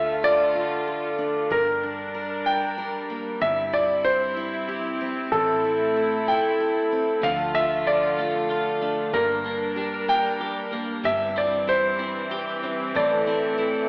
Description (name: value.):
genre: pop.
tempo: 63 BPM (dotted quarters).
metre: 6/8.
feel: straight.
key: D minor.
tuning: A4 = 440 Hz.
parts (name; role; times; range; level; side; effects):
clear concert grand piano; melody; 0.0-13.9 s; A4 to G5; -26 LUFS; equal; none.
picked steel-string acoustic guitar; accompaniment; 0.0-13.9 s; G2 to Bb4; -30 LUFS; equal; none.
warm studio string section; sustained chords; 0.0-13.9 s; D3 to Bb4; -32 LUFS; equal; none.
vintage muted fingered electric bass; bass; 0.0-13.9 s; G1 to D2; -46 LUFS; equal; none.
twelve-string electric guitar; arpeggios; 7.2-13.9 s; F3 to G4; -36 LUFS; equal; none.
room: wet recital hall reverb, RT60 1.5 s.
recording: recorded in a church or concert hall, AM radio sound.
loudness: -24 LUFS.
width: mono.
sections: 0.0-13.9 A section.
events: none.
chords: 0.0 Dm; 1.5 Gm; 3.4 C/G; 5.3 Am; 7.2 Dm; 9.1 Gm; 11.0 C/G; 13.0 Am.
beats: 0.56 | 1.51 2.46 | 3.42 4.37 | 5.33 6.28 | 7.23 8.19 | 9.14 10.09 | 11.04 12.00 | 12.95.